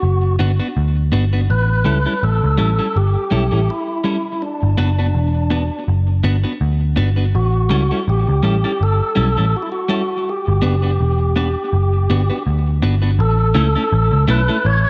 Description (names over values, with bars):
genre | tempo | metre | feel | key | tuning
roots reggae | 82 BPM | 4/4 | swing 57% on 16ths | A mixolydian | A4 = 442 Hz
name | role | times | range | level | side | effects
tonewheel organ | melody | 0.0-14.9 s | D4 to C#5 | -24 LUFS | equal | fast rotary speaker, tape echo
vintage muted picked electric bass | bass | 0.0-14.8 s | E1 to D2 | -18 LUFS | equal | none
clean electric guitar | accompaniment | 0.4-14.6 s | G3 to B4 | -25 LUFS | equal | subtle chorus, tape echo
room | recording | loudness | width
moderate echo chamber reverb, RT60 1.9 s | none | -17 LUFS | mono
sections
0.0-13.2 A section; 13.2-14.9 B section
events
none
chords
0.0 Gmaj7; 1.5 A7; 4.4 Gmaj7; 7.3 A7; 10.3 Gmaj7; 13.2 A